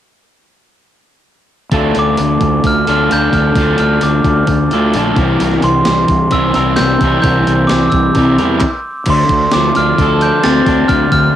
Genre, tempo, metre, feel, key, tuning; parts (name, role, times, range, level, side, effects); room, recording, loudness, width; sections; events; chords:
indie rock; 131 BPM; 4/4; straight; D minor; A4 = 440 Hz
crunchy overdriven guitar; riff; 1.7-11.4 s; C3 to Bb4; -14 LUFS; left 1 dB; cassette tape
fuzz fingered electric bass; bass; 1.7-11.3 s; Bb1 to E2; -17 LUFS; equal; overdrive
gated 80s digital drum machine; drums; 1.7-11.2 s; crash cymbal, handclaps, hi-hat, kick drum, snare drum; -19 LUFS; equal; gated reverb, gated reverb snare, overdrive
glockenspiel with hard plastic mallets; melody; 2.0-11.4 s; C6 to A6; -15 LUFS; right 1 dB; cassette tape
light reverb; home recording on cassette; -10 LUFS; side -11 dB against mid
1.7-9.1 A section; 9.1-11.4 B section
stop 8.6-9.1
1.7 Dm; 5.2 C7; 8.9 N.C.; 9.1 Dm7